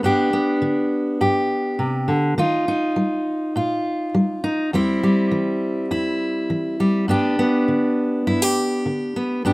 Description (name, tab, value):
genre	folk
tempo	102 BPM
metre	4/4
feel	straight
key	G major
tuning	A4 = 440 Hz
part	fingerpicked steel-string acoustic guitar	solo	0.0-9.5 s	E2 to G4	-18 LUFS	equal	none
room	light reverb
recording	rough home demo mix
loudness	-18 LUFS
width	side -22 dB against mid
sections	0.0-9.5 A section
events	none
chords	0.0 G; 2.4 Ebadd9; 4.7 C/E; 7.1 G